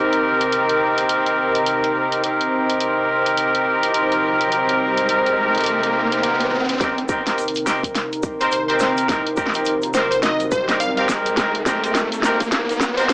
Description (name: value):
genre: glitch hop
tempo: 105 BPM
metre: 4/4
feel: swing 60% on 16ths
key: C minor pentatonic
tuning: A4 = 440 Hz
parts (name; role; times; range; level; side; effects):
- dark analog pad; sustained chords; 0.0-13.1 s; C3 to C5; -24 LUFS; equal; chorus, sidechain pumping, cassette tape
- warm horn section; stabs; 0.0-13.1 s; C4 to Bb4; -19 LUFS; equal; sidechain pumping, low-pass filter, cassette tape, analog delay
- pop drum kit; drums; 0.1-13.1 s; hi-hat, snare drum; -23 LUFS; equal; cassette tape
- riser; sound effects; 3.9-13.1 s; none; -27 LUFS; equal; none
- electronic kick drum; drums; 6.8-12.9 s; none; -26 LUFS; equal; cassette tape
- egg shaker; percussion; 6.8-13.1 s; none; -37 LUFS; equal; none
- plucky unison lead; melody; 8.4-13.1 s; C5 to F5; -22 LUFS; equal; phaser, cassette tape
room: moderate studio reverb, RT60 0.6 s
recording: home recording on cassette, high-pass filter, small speaker sound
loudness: -16 LUFS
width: side -24 dB against mid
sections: 0.0-6.8 A section; 6.8-13.1 B section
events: riser 3.9-6.8, 6.8-13.1; build-up 6.8-13.1; drum fill 6.8-13.1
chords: 0.0 Cm7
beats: 0.52 1.09 1.67 | 2.24 2.81 3.38 3.95 | 4.52 5.09 5.67 6.24 | 6.81 7.38 7.95 8.52 | 9.09 9.67 10.24 10.81 | 11.38 11.95 12.52 13.09